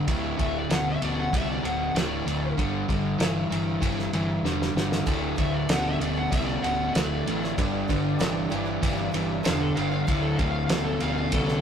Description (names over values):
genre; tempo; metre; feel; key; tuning
classic rock; 96 BPM; 4/4; straight; D major; A4 = 440 Hz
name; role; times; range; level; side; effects
overdriven semi-hollow guitar; riff; 0.0-11.6 s; D2 to E3; -26 LUFS; left 1 dB; none
picked electric bass; bass; 0.1-11.6 s; D1 to C2; -33 LUFS; equal; none
cloth-damped thuddy drum kit; drums; 0.1-11.6 s; kick drum, ride cymbal, snare drum; -29 LUFS; right 1 dB; none
overdriven slide guitar; melody; 0.4-11.6 s; A4 to F#5; -31 LUFS; left 1 dB; none
picked swing-style acoustic guitar; accompaniment; 5.1-11.6 s; G2 to B4; -36 LUFS; right 5 dB; none
tonewheel organ; sustained chords; 5.1-11.6 s; A3 to D5; -40 LUFS; right 2 dB; none
room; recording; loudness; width
light reverb; rough rehearsal-room recording, tube saturation; -23 LUFS; side -8 dB against mid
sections
0.0-11.6 A section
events
electric slide guitar solo 0.0-11.6; drum fill 4.4-5.1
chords
0.1 D5; 2.6 G5; 5.1 D; 7.6 G; 10.1 D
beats
| 0.07 0.70 1.32 1.95 | 2.57 3.20 3.82 4.45 | 5.07 5.70 6.32 6.95 | 7.57 8.20 8.83 9.45 | 10.08 10.71 11.34